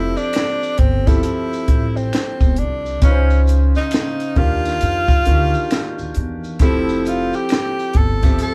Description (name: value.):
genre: R&B, neo-soul.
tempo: 67 BPM.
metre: 4/4.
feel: swing 62% on 16ths.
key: F major.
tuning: A4 = 440 Hz.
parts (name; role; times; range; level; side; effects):
breathy tenor saxophone; melody; 0.0-8.5 s; C4 to A4; -24 LUFS; equal; none.
warm concert grand piano; accompaniment; 0.0-8.5 s; Db3 to E5; -26 LUFS; equal; none.
upright bass; bass; 0.0-8.4 s; E1 to F2; -21 LUFS; equal; none.
maracas and finger snaps; percussion; 0.2-8.5 s; none; -40 LUFS; equal; none.
compact cocktail drum kit; drums; 0.3-8.5 s; hi-hat, kick drum, snare drum; -19 LUFS; equal; none.
room: light reverb.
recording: band playing live in one room.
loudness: -17 LUFS.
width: mono.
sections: 0.0-8.5 A section.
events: none.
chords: 0.0 Fmaj9; 3.0 Dbmaj9; 4.4 Ebmaj9; 6.6 Fmaj9.